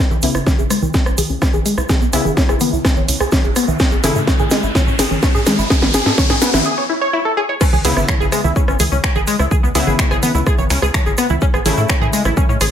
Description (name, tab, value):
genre	melodic techno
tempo	126 BPM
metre	4/4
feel	straight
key	C# minor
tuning	A4 = 440 Hz
part	tight sequenced synth	arpeggios	0.0-12.6 s	G#3 to C#5	-20 LUFS	left 1 dB	chorus, sidechain pumping, tape echo
part	riser	sound effects	0.1-6.7 s	none	-24 LUFS	left 1 dB	none
part	tight sequencer bass	bass	0.1-12.7 s	G#1 to A2	-20 LUFS	equal	sidechain pumping
part	house drum kit	drums	0.1-12.7 s	congas, crash cymbal, finger snaps, hi-hat, rim click, snare drum	-19 LUFS	right 1 dB	overdrive
part	egg shaker	percussion	0.1-12.7 s	none	-29 LUFS	right 3 dB	none
part	synth brass stab	stabs	0.2-12.7 s	C#3 to E4	-23 LUFS	left 3 dB	chorus, cassette tape, sidechain pumping, tape echo
part	electronic kick drum	drums	0.5-12.5 s	none	-16 LUFS	equal	overdrive
room	moderate digital room reverb, RT60 0.9 s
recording	none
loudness	-13 LUFS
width	side -9 dB against mid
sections	0.0-7.6 A section; 7.6-12.7 B section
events	build-up 0.0-7.6; drum fill 0.0-6.7; filter sweep on synth arpeggio sound 0.0-7.6; filter sweep on synth stab 0.0-7.6; riser 0.1-6.7; break 6.7-7.6; drop 7.6-12.7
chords	0.0 C#m7; 3.8 A; 7.6 C#m7; 11.4 A